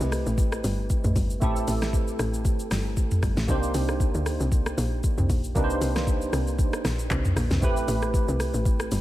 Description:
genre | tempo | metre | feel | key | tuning
amapiano | 116 BPM | 4/4 | swing 55% on 16ths | unclear | A4 = 440 Hz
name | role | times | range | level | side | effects
barky tine electric piano | accompaniment | 0.0-9.0 s | A3 to C5 | -30 LUFS | right 2 dB | ensemble chorus
tight log drum bass | bass | 0.0-9.0 s | G1 to D2 | -27 LUFS | equal | none
smooth R&B drum kit | drums | 0.0-9.0 s | handclaps, hi-hat, kick drum, rim click, shaker, snare drum, toms | -26 LUFS | equal | none
room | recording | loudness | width
digital ambience | none | -22 LUFS | side -15 dB against mid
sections
0.0-9.0 A section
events
none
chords
0.0 Am9; 3.5 Cm9; 7.6 Am9

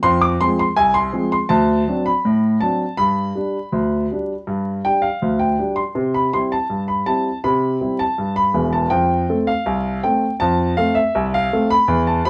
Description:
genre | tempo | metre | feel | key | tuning
ragtime piano | 81 BPM | 2/4 | straight | unclear | A4 = 440 Hz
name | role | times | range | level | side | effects
warm grand piano | solo | 0.0-12.3 s | E1 to D6 | -19 LUFS | equal | none
room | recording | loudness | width
moderate studio ambience, RT60 0.5 s | band playing live in one room, vinyl crackle, nothing above 10.6 kHz | -19 LUFS | mono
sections
0.0-12.3 A section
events
none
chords
0.0 Fm; 1.5 D7; 3.0 G; 6.0 C; 8.9 F

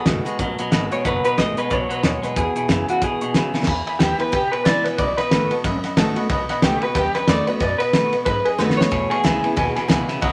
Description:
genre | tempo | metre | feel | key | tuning
rockabilly | 183 BPM | 4/4 | swing 59% on 8ths | E major | A4 = 438 Hz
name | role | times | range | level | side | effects
electric guitar through a small old amp | melody | 0.0-10.1 s | F#4 to D#5 | -24 LUFS | equal | none
picked steel-string acoustic guitar | accompaniment | 0.0-10.3 s | E2 to F#4 | -29 LUFS | equal | none
twangy electric guitar | riff | 0.0-3.7, 8.9-10.3 s | E2 to G#3 | -28 LUFS | equal | none
clear upright piano | accompaniment | 0.1-10.3 s | D#5 to C#6 | -31 LUFS | equal | none
upright bass | bass | 0.1-10.3 s | F#1 to B2 | -32 LUFS | equal | none
cloth-damped thuddy drum kit | drums | 0.1-10.3 s | crash cymbal, hi-hat, kick drum, ride cymbal, snare drum | -24 LUFS | equal | none
room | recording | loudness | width
wet studio reverb, RT60 0.5 s | none | -20 LUFS | mono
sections
0.0-3.7 A section; 3.7-10.3 B section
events
drum fill 3.5, 8.6-8.9; clean electric guitar solo 3.7-10.3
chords
0.0 B7; 2.4 E; 5.0 B7; 8.9 E

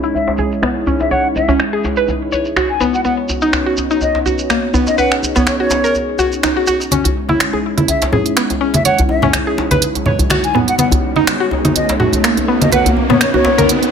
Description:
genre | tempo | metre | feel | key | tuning
afro house | 124 BPM | 4/4 | swing 55% on 16ths | C# minor | A4 = 440 Hz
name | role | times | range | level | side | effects
warm analog pad | sustained chords | 0.0-13.9 s | G#3 to C#5 | -20 LUFS | right 1 dB | chorus
mallet-like synth pluck | arpeggios | 0.0-13.7 s | A#3 to C#5 | -17 LUFS | equal | chorus, ping-pong delay
shekere | percussion | 0.0-6.9 s | none | -26 LUFS | right 2 dB | none
mellow silver concert flute | melody | 0.1-13.7 s | C#5 to G#5 | -19 LUFS | left 1 dB | ping-pong delay
djembe | percussion | 0.1-13.7 s | none | -21 LUFS | equal | none
afro-pop drum kit | drums | 0.6-13.9 s | finger snaps, hi-hat | -19 LUFS | right 2 dB | none
congas | percussion | 6.9-13.7 s | none | -18 LUFS | right 1 dB | none
riser | sound effects | 8.7-13.9 s | none | -21 LUFS | equal | none
room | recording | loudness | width
light reverb, small room ambience | low-pass filter | -12 LUFS | side -7 dB against mid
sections
0.0-6.9 A section; 6.9-13.9 B section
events
filter sweep 0.0-6.9; build-up 6.9-13.9; riser 8.7-13.9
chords
0.0 C#madd9; 3.0 Badd9; 6.9 C#madd9; 10.8 Badd9

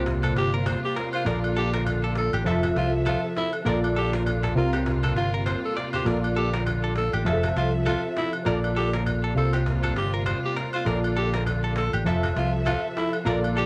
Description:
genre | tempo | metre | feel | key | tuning
afrobeats | 100 BPM | 4/4 | swing 58% on 16ths | F major | A4 = 440 Hz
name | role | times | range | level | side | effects
warm analog keys | accompaniment | 0.0-13.7 s | C3 to E5 | -30 LUFS | equal | chorus, cassette tape
warm studio string section | sustained chords | 0.0-13.7 s | C3 to E5 | -36 LUFS | equal | cassette tape
direct-recorded clean electric guitar | riff | 0.0-13.7 s | G4 to D5 | -36 LUFS | equal | cassette tape, analog delay
fingered electric bass | bass | 0.0-13.7 s | F1 to C2 | -29 LUFS | equal | none
cajon | drums | 0.1-13.6 s | none | -37 LUFS | equal | cassette tape
agogo bells | percussion | 0.2-13.6 s | none | -38 LUFS | equal | none
growling alto saxophone | melody | 0.4-13.7 s | E4 to A4 | -32 LUFS | equal | cassette tape, analog delay
room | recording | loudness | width
light reverb | home recording on cassette | -25 LUFS | mono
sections
0.0-13.7 A section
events
none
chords
0.0 C7sus4; 1.3 Bbmaj7; 2.5 Fmaj7; 3.7 Bbmaj7; 4.6 C7sus4; 6.1 Bbmaj7; 7.3 Fmaj7; 8.5 Bbmaj7; 9.4 C7sus4; 10.9 Bbmaj7; 12.1 Fmaj7

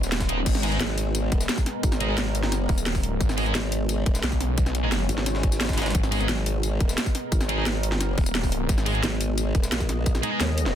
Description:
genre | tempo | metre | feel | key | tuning
dark technical drum and bass | 175 BPM | 4/4 | straight | G# minor | A4 = 440 Hz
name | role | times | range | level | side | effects
deep dark ambient pad | sustained chords | 0.0-10.8 s | G#3 to D#5 | -31 LUFS | left 1 dB | chorus, built-in reverb, vintage 12-bit sampler grit, sidechain pumping
snarling distorted saw bass | bass | 0.0-9.0 s | D#1 to B1 | -26 LUFS | equal | tube saturation
drum and bass drum kit | drums | 0.0-10.7 s | crash cymbal, hi-hat, snare drum, tambourine | -29 LUFS | equal | overdrive
jungle sampler-style drum kit | drums | 0.0-10.7 s | hi-hat, snare drum | -38 LUFS | right 1 dB | none
electronic kick drum | drums | 0.2-10.1 s | none | -24 LUFS | equal | overdrive
thick fuzz guitar | stabs | 0.3-10.4 s | G#3 to G#4 | -32 LUFS | right 1 dB | distortion, ping-pong delay
formant-sweep wobble bass | bass | 0.8-10.7 s | D#1 to D#2 | -26 LUFS | equal | chorus
room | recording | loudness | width
digital ambience | dense, heavily limited modern master | -22 LUFS | side -10 dB against mid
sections
0.0-10.8 A section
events
none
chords
0.0 G#madd9

